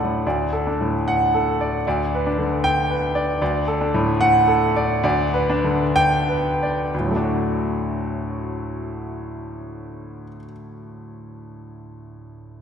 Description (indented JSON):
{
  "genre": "classical, romantic character piece for solo piano",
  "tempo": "58-78 BPM",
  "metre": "2/4",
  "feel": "rubato",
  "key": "D major",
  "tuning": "A4 = 440 Hz",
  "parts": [
    { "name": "clear baby grand piano", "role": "solo", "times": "0.0-12.6 s", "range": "D2 to A5", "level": "-20 LUFS", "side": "equal", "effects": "none" }
  ],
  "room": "wet concert hall reverb, RT60 2.3 s",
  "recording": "recorded in a church or concert hall",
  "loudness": "-18 LUFS",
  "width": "side -7 dB against mid",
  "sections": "0.2-6.9 A section; 6.9-10.6 B section",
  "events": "slowing down 2.6-6.9",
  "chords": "0.2 D; 1.8 G/D; 3.4 D; 5.0 G/D; 6.9 D",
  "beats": "| 0.24 1.05 | 1.84 2.62 | 3.40 4.21 | 5.04 5.94 | 6.93 7.85 | 8.76 9.67"
}